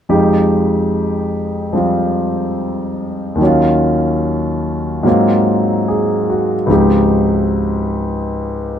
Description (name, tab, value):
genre	jazz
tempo	73 BPM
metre	4/4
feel	swing 69% on 8ths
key	F minor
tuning	A4 = 441 Hz
part	warm concert grand piano	accompaniment	0.1-8.8 s	Db2 to Ab4	-13 LUFS	equal	none
room	moderate studio reverb, RT60 0.8 s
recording	dark, warm production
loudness	-13 LUFS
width	side -9 dB against mid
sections	0.1-8.8 A section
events	none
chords	0.1 Fm9; 3.4 Ebm9; 5.0 Ab13; 6.7 Dbmaj9#11